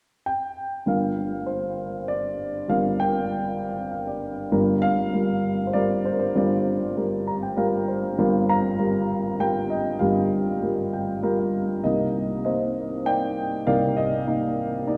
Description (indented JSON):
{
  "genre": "acoustic folk-pop ballad",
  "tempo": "98 BPM",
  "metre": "3/4",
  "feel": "straight",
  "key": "G minor",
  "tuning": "A4 = 442 Hz",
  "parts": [
    { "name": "dark upright piano", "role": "solo", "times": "0.3-15.0 s", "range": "G1 to Bb5", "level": "-24 LUFS", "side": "equal", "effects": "none" }
  ],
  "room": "wet cathedral reverb, RT60 4.4 s",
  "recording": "recorded in a church or concert hall",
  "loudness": "-24 LUFS",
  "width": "mono",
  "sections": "0.9-4.5 A section; 4.5-15.0 B section",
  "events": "upright piano fill 3.6-4.5, 7.0-8.2, 10.6-11.8",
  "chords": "0.0 N.C.; 0.9 Gm7; 11.8 Cm9"
}